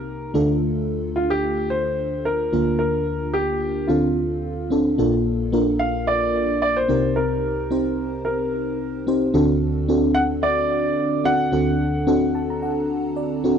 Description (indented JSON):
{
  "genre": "pop",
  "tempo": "110 BPM",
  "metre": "4/4",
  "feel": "swing 55% on 16ths",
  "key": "unclear",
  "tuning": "A4 = 440 Hz",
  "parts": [
    { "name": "warm baby grand piano", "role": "melody", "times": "0.0-13.1 s", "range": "F4 to F#5", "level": "-23 LUFS", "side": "equal", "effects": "tape echo" },
    { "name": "FM electric piano with soft pad layer", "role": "accompaniment", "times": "0.0-13.6 s", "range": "Bb1 to Bb5", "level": "-20 LUFS", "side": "equal", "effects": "chorus" }
  ],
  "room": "little or no reverb",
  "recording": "dry, close 1970s-style studio recording",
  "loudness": "-19 LUFS",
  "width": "side -8 dB against mid",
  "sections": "0.0-5.0 A section; 5.0-13.6 B section",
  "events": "FM electric piano fill 12.1-13.6",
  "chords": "0.3 Dm; 2.5 Bb/D; 3.9 Dm7; 5.0 Bbmaj7; 6.9 Cm7; 9.3 D7"
}